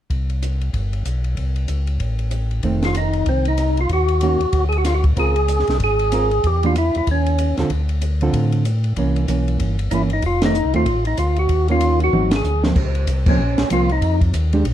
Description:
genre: soul jazz organ trio.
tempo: 190 BPM.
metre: 4/4.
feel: swing 60% on 8ths.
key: unclear.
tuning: A4 = 443 Hz.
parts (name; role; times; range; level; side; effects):
mellow tonewheel organ; bass; 0.1-14.7 s; F1 to A2; -19 LUFS; equal; slow rotary speaker.
compact cocktail drum kit; drums; 0.1-14.7 s; crash cymbal, hi-hat, kick drum, ride cymbal, snare drum, toms; -25 LUFS; equal; none.
hollow-body jazz guitar; accompaniment; 2.6-14.6 s; D3 to Bb4; -22 LUFS; right 4 dB; none.
percussive tonewheel organ; melody; 2.9-7.6, 9.9-14.2 s; C4 to Ab4; -20 LUFS; equal; slow rotary speaker, overdrive.
room: light reverb.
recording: dark, warm production.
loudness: -16 LUFS.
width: side -11 dB against mid.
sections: 0.1-2.6 A section; 2.6-12.8 B section; 12.8-14.7 C section.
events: band accent 10.4, 12.3, 13.2; drum fill 12.1-12.8.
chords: 0.1 C5; 1.4 Am; 2.6 F7; 3.9 Ebm7; 4.5 Ddim; 5.2 Db6; 6.4 Em7b5; 7.1 Ebsus2; 7.7 Dm7; 9.0 C7b9; 10.2 F7; 11.5 Eb5; 12.1 Ab7; 12.8 Db6; 14.0 Fm9.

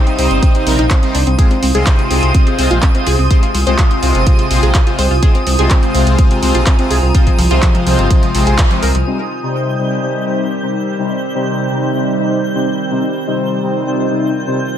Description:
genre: progressive house.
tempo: 125 BPM.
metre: 4/4.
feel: straight.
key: C minor.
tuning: A4 = 441 Hz.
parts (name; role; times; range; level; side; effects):
evolving wavetable pad; sustained chords; 0.0-14.8 s; Eb3 to C6; -22 LUFS; right 3 dB; chorus, built-in reverb, sidechain pumping.
wide unison pluck; arpeggios; 0.0-9.0 s; F3 to C5; -20 LUFS; equal; sidechain pumping, ping-pong delay.
soft supersaw; stabs; 0.0-14.6 s; C3 to C5; -17 LUFS; left 2 dB; phaser, sidechain pumping, low-pass filter, ping-pong delay.
twinkling granular texture; texture; 0.0-14.8 s; Eb6 to G6; -25 LUFS; right 1 dB; built-in reverb, sidechain pumping.
deep house drum kit; drums; 0.1-9.0 s; handclaps, hi-hat; -21 LUFS; right 1 dB; overdrive, low-pass filter on hats, studio reverb, low-pass filter on snare.
dark detuned saw bass; bass; 0.2-9.0 s; G1 to C2; -15 LUFS; equal; sidechain pumping.
electronic kick drum; drums; 0.4-8.7 s; none; -11 LUFS; equal; studio reverb.
room: digital ambience.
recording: none.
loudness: -11 LUFS.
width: side -10 dB against mid.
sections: 0.0-9.1 A section; 9.1-14.8 B section.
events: band accent 8.6; filter sweep on supersaw synth 9.1-14.8.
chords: 0.0 Cm; 1.4 Fm; 9.1 Cm.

